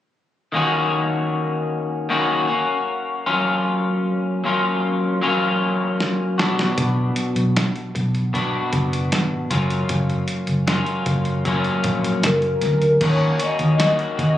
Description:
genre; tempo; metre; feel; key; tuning
indie pop, bedroom pop; 77 BPM; 4/4; straight; unclear; A4 = 440 Hz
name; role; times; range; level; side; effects
electric guitar at the edge of break-up; accompaniment; 0.5-14.4 s; B2 to F#4; -21 LUFS; left 2 dB; wide subtle chorus, vibrato effect
lo-fi sampler-style drum kit; drums; 6.0-14.4 s; crash cymbal, hi-hat, kick drum, snare drum; -24 LUFS; equal; none
vintage muted fingered electric bass; bass; 6.8-14.4 s; F#1 to D#2; -21 LUFS; equal; none
warm velvety synth lead; melody; 12.3-14.4 s; A#4 to D#5; -20 LUFS; left 1 dB; analog chorus, tape echo
room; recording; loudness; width
light reverb; recorded on a phone in the room, club reverb, compression; -18 LUFS; side -12 dB against mid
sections
0.5-13.0 A section; 13.0-14.4 B section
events
drum fill 6.0-6.8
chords
0.5 D#m7; 3.3 F#maj7; 6.4 Bm; 9.5 F#maj7; 13.0 D#m7

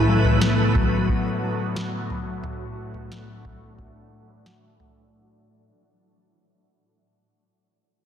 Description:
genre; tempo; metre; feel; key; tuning
dream pop; 89 BPM; 4/4; straight; unclear; A4 = 440 Hz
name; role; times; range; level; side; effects
shimmering ambient pad; sustained chords; 0.0-5.1 s; A2 to F#4; -27 LUFS; right 1 dB; chorus, built-in reverb, phaser, low-pass filter
mellow electric guitar; arpeggios; 0.0-5.7 s; A2 to F#4; -24 LUFS; left 2 dB; wide subtle chorus, low-pass filter, ping-pong delay
soft vintage rhythm box; drums; 0.2-5.0 s; kick drum, snare drum, toms; -27 LUFS; equal; overdrive
room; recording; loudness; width
wet lush hall reverb, RT60 1.7 s, digital ambience; dense, heavily limited modern master; -20 LUFS; side -9 dB against mid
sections
0.0-5.1 A section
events
fade-out 0.0-5.1; filter sweep 0.0-5.1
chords
0.0 Bm7/A; 2.4 Dadd9/A

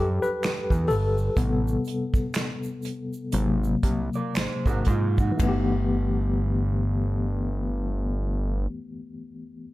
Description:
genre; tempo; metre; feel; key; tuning
R&B, neo-soul; 56-64 BPM; 4/4; swing 60% on 16ths; G major; A4 = 437 Hz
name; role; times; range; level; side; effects
tine electric piano; accompaniment; 0.0-9.7 s; C3 to B4; -28 LUFS; left 3 dB; medium tremolo
fat analog bass; bass; 0.0-8.7 s; G1 to Ab2; -25 LUFS; equal; none
egg shaker and finger snaps; percussion; 0.2-5.9 s; none; -42 LUFS; right 5 dB; none
unplugged drum kit; drums; 0.4-5.7 s; finger snaps, hi-hat, kick drum, ride cymbal, snare drum; -26 LUFS; equal; none
electric guitar through a small old amp; second line; 4.2-5.7 s; Eb4 to D5; -31 LUFS; right 6 dB; none
room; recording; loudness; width
light reverb; dark, warm production; -23 LUFS; side -17 dB against mid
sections
0.0-5.4 A section; 5.4-9.7 B section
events
slowing down 0.0-5.4; tine electric piano solo 0.0-5.4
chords
0.0 Em7; 1.4 Am7; 3.3 Ab9; 5.4 G69

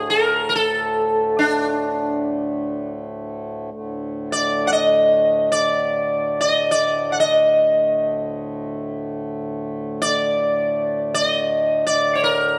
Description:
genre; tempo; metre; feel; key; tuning
indian classical, Hindustani; free time; none; none; unclear; A4 = 438 Hz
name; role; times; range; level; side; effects
sitar; melody; 0.0-12.6 s; D4 to F#5; -20 LUFS; equal; none
pedal harmonium; drone; 0.0-12.6 s; D2 to A2; -31 LUFS; equal; none
room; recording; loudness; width
moderate recital hall reverb, RT60 1.8 s; none; -20 LUFS; mono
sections
0.0-3.7 A section; 3.7-12.6 A section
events
none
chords
none

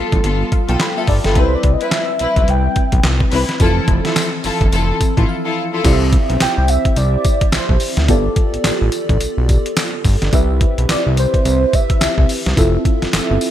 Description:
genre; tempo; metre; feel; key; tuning
R&B, new jack swing; 107 BPM; 4/4; swing 60% on 16ths; C major; A4 = 440 Hz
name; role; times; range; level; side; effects
FM electric piano with soft pad layer; accompaniment; 0.0-13.5 s; E3 to B5; -21 LUFS; equal; chorus, phaser
warm studio string section; stabs; 0.0-5.9 s; B3 to B4; -22 LUFS; left 4 dB; none
fat analog bass; bass; 0.0-13.4 s; F1 to D2; -17 LUFS; equal; none
boom bap sampler-style drum kit; drums; 0.1-13.5 s; crash cymbal, handclaps, hi-hat, kick drum, snare drum, tambourine; -16 LUFS; equal; gated reverb
warm velvety synth lead; melody; 1.4-12.3 s; C5 to G5; -21 LUFS; equal; chorus, digital delay
room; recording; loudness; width
light reverb; bright 1980s-style digital production; -13 LUFS; side -11 dB against mid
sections
0.0-5.8 A section; 5.8-13.5 B section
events
FM electric piano fill 0.2-1.4, 5.0-5.8; break 5.3-5.8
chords
0.0 G9; 1.4 Cmaj7; 3.6 Fmaj7; 5.8 Cmaj7; 8.1 G9; 10.3 Cmaj7; 12.6 Fmaj7

